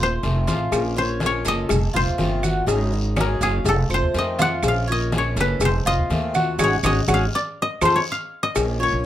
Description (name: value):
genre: latin, Cuban son and guajira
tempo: 123 BPM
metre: 4/4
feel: straight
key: Bb harmonic minor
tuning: A4 = 440 Hz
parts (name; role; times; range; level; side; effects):
- koto; melody; 0.0-9.1 s; Ab4 to Gb5; -24 LUFS; left 1 dB; none
- picked acoustic archtop guitar; accompaniment; 0.0-9.0 s; C3 to Ab4; -28 LUFS; left 2 dB; none
- Cuban tres; arpeggios; 0.0-9.1 s; Eb4 to F5; -25 LUFS; equal; none
- upright bass; bass; 0.0-9.1 s; Eb1 to F2; -24 LUFS; right 1 dB; none
- congas; percussion; 0.2-9.0 s; none; -28 LUFS; left 1 dB; none
- cowbell; percussion; 0.2-8.8 s; none; -28 LUFS; left 5 dB; none
- guiro; percussion; 0.2-9.0 s; none; -36 LUFS; left 2 dB; none
- maracas; percussion; 0.2-9.0 s; none; -35 LUFS; right 7 dB; none
- claves; percussion; 0.7-8.8 s; none; -32 LUFS; right 4 dB; none
room: moderate small room reverb, RT60 0.5 s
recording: none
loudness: -18 LUFS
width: side -12 dB against mid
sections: 0.0-8.6 A section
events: koto solo 0.0-8.6; band accent 6.6-8.6; drum fill 8.3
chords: 0.0 F7; 0.7 Bbm; 1.7 F7; 2.7 Ab7sus4; 3.7 F7; 4.6 Bbm; 5.6 F7; 6.6 Ab7sus4; 7.6 F7; 8.6 Bbm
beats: 0.23 | 0.72 1.21 1.70 2.19 | 2.68 3.17 3.66 4.15 | 4.64 5.13 5.62 6.11 | 6.60 7.09 7.58 8.06 | 8.55 9.04